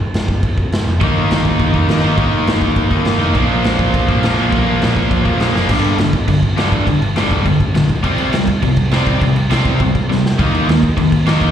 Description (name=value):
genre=punk rock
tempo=205 BPM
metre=4/4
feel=straight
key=G minor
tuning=A4 = 440 Hz
part: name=overdriven picked electric bass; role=bass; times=0.0-11.5 s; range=F1 to Eb3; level=-19 LUFS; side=equal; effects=none
part: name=raw garage drum kit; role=drums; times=0.1-11.5 s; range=crash cymbal, kick drum, snare drum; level=-18 LUFS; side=equal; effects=none
part: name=cranked stack guitar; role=riff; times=1.0-11.5 s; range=G2 to Eb4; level=-17 LUFS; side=left 7 dB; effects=overdrive, slapback echo
part: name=cranked stack guitar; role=riff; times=1.0-11.5 s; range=G2 to Eb4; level=-18 LUFS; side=right 9 dB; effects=overdrive
room=studio ambience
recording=live gig heard through the venue's PA, recital hall reverb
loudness=-12 LUFS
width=side -9 dB against mid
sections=0.0-5.7 A section; 5.7-11.5 B section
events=drum fill 5.5, 10.1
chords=0.0 N.C.; 1.0 Eb/G; 3.4 Bb5; 5.7 G5; 8.0 C5; 10.4 Eb5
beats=0.13 0.43 0.72 | 1.01 1.30 1.60 1.89 | 2.18 2.48 2.77 3.06 | 3.35 3.65 3.94 4.23 | 4.52 4.82 5.11 5.40 | 5.70 5.99 6.28 6.58 | 6.87 7.16 7.45 7.75 | 8.04 8.33 8.63 8.92 | 9.21 9.51 9.80 10.10 | 10.39 10.68 10.98 11.27